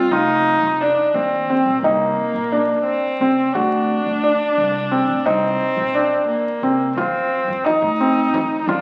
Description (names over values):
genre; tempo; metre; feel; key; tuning
contemporary instrumental, chamber music in an uneven meter; 175 BPM (eighths); 5/8; straight; unclear; A4 = 443 Hz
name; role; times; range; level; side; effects
warm viola; second line; 0.0-8.8 s; Bb3 to F4; -23 LUFS; equal; none
felt-muted upright piano; arpeggios; 0.0-8.8 s; C4 to F#4; -21 LUFS; equal; none
upright bass; bass; 0.0-8.8 s; F1 to D3; -30 LUFS; equal; none
frame drum; percussion; 7.0-8.8 s; none; -34 LUFS; equal; none
room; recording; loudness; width
wet recital hall reverb, RT60 1.7 s; very old 78 rpm record, vinyl crackle; -19 LUFS; mono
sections
0.0-7.0 A section; 7.0-8.8 B section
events
none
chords
0.1 F5; 1.8 Cm9; 3.5 D7; 5.3 Cm7; 7.0 F7